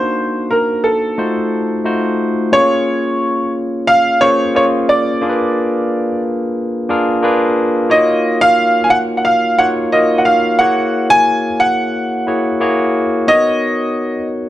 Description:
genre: soul.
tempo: 89 BPM.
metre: 4/4.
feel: straight.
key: Bb minor.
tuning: A4 = 440 Hz.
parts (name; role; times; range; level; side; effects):
clear grand piano; melody; 0.0-14.2 s; A4 to Ab5; -14 LUFS; equal; none.
barky tine electric piano; accompaniment; 0.0-14.5 s; A3 to Db5; -16 LUFS; left 1 dB; overdrive.
room: light reverb, studio reverb.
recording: none.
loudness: -12 LUFS.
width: side -14 dB against mid.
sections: 0.0-2.5 A section; 2.5-14.5 B section.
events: none.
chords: 0.0 Cm7b5; 1.2 F7b9; 2.5 Bbm9; 5.2 Bb7b9; 7.9 Ebm9; 10.6 Gb7; 13.3 Bmaj9.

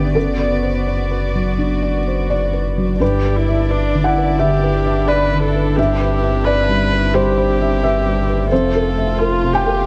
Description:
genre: neoclassical piano and strings.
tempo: 87 BPM.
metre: 4/4.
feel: rubato.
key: G major.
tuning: A4 = 440 Hz.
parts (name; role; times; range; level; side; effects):
felt-muted upright piano; accompaniment; 0.0-9.9 s; F2 to G5; -20 LUFS; equal; none.
warm chamber string section; sustained chords; 0.0-9.9 s; A3 to D5; -26 LUFS; equal; none.
pure sine sub bass; bass; 0.0-9.9 s; F1 to G1; -23 LUFS; equal; none.
warm viola; accompaniment; 3.0-9.9 s; D4 to B4; -23 LUFS; equal; none.
room: moderate plate reverb, RT60 2.2 s.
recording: dreamy mix soaked in reverb, cassette tape.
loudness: -17 LUFS.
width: mono.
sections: 0.0-3.0 A section; 3.0-9.9 B section.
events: none.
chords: 0.2 Bm7/F#; 3.0 G6; 5.8 Cmaj7/G; 8.5 Fmaj7.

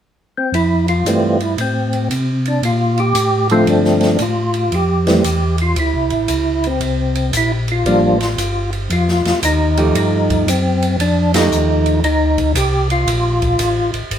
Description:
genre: soul jazz organ trio.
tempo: 115 BPM.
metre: 4/4.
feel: swing 66% on 8ths.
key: F major, F mixolydian from 8.9 s.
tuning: A4 = 439 Hz.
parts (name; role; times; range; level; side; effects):
percussive tonewheel organ; melody; 0.4-13.9 s; D3 to G4; -16 LUFS; equal; slow rotary speaker, chorus vibrato.
mellow tonewheel organ; bass; 0.5-14.2 s; G1 to C3; -18 LUFS; equal; chorus vibrato, slow rotary speaker.
open jazz drum kit; drums; 0.5-14.2 s; hi-hat, kick drum, ride cymbal, snare drum; -23 LUFS; right 1 dB; none.
vintage hollow-body jazz guitar; accompaniment; 9.8-12.0 s; F3 to G4; -19 LUFS; right 4 dB; none.
room: moderate studio reverb, RT60 0.7 s.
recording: band playing live in one room.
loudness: -14 LUFS.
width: side -9 dB against mid.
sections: 0.5-8.9 A section; 8.9-14.2 B section.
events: band accent 11.3.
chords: 0.0 N.C.; 0.5 Fmaj7; 2.6 Bbmaj9; 4.7 Fmaj7; 6.8 C9sus4; 8.9 F9; 13.1 Bb7(no3).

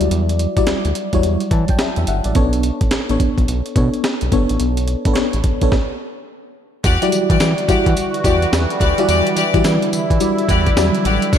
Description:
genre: R&B, new jack swing.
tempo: 107 BPM.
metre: 4/4.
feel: swing 63% on 16ths.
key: E dorian.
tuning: A4 = 440 Hz.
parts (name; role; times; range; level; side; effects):
FM electric piano with auto-pan; accompaniment; 0.0-11.4 s; F#3 to A5; -19 LUFS; left 1 dB; phaser, slapback echo.
round analog bass; bass; 0.0-11.4 s; G1 to E3; -19 LUFS; equal; none.
breakbeat sampler-style drum kit; drums; 0.0-11.4 s; hi-hat, kick drum, snare drum, tambourine; -19 LUFS; equal; none.
sweeping resonant pad; sustained chords; 6.8-11.4 s; B2 to F#4; -22 LUFS; right 2 dB; chorus.
bright studio string section; stabs; 6.8-11.4 s; D4 to D5; -21 LUFS; left 4 dB; slapback echo.
room: moderate concert hall reverb, RT60 2.1 s.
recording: big arena sound.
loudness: -14 LUFS.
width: side -9 dB against mid.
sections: 0.0-6.8 A section; 6.8-11.4 B section.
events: FM electric piano fill 1.2-2.4; stop 5.7-6.8.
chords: 0.0 Em9; 2.4 Bm9; 6.8 Em9.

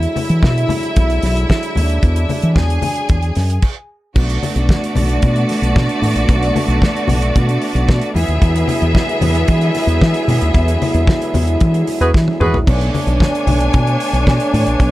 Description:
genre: disco.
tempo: 113 BPM.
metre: 4/4.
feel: straight.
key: B dorian.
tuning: A4 = 438 Hz.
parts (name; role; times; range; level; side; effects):
bright symphonic string section; second line; 0.0-14.9 s; A3 to G#5; -21 LUFS; equal; none.
mellow French horn section; sustained chords; 0.0-14.9 s; D3 to E4; -21 LUFS; right 1 dB; none.
fingered electric bass; bass; 0.0-14.9 s; A#1 to E3; -16 LUFS; equal; none.
damped 70s drum kit; drums; 0.0-14.9 s; crash cymbal, hi-hat, kick drum, snare drum, toms; -17 LUFS; equal; none.
congas; percussion; 0.2-14.7 s; none; -24 LUFS; left 3 dB; none.
warm horn section; stabs; 12.0-12.6 s; F#4 to B4; -16 LUFS; right 1 dB; none.
room: little or no reverb.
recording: dark, warm production.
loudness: -13 LUFS.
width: side -16 dB against mid.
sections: 0.0-4.2 A section; 4.2-14.9 B section.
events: stop 3.6-4.2; band accent 10.5-12.7; drum fill 12.1-12.7.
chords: 0.0 E9; 4.2 Bm7; 8.2 E9; 12.7 Bm9.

